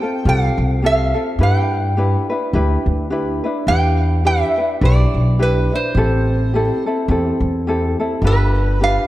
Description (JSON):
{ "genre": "Hawaiian", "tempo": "106 BPM", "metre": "4/4", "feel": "swing 58% on 8ths", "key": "unclear", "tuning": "A4 = 440 Hz", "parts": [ { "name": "metal-body resonator slide guitar", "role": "melody", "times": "0.0-9.1 s", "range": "B4 to G5", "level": "-20 LUFS", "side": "right 2 dB", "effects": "diffuse ambient delay" }, { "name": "ukulele", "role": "accompaniment", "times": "0.0-9.1 s", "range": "C4 to B4", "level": "-20 LUFS", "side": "left 1 dB", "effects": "none" }, { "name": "upright bass", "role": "bass", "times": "0.3-9.0 s", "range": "G1 to G2", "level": "-17 LUFS", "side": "equal", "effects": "none" } ], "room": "moderate lush hall reverb, RT60 2.0 s, small room ambience", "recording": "dreamy mix soaked in reverb, cassette tape", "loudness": "-15 LUFS", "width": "side -15 dB against mid", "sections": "0.0-9.1 A section", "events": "none", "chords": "0.0 Fadd9; 1.4 G6; 3.7 Em7; 6.0 Am7; 8.2 G7" }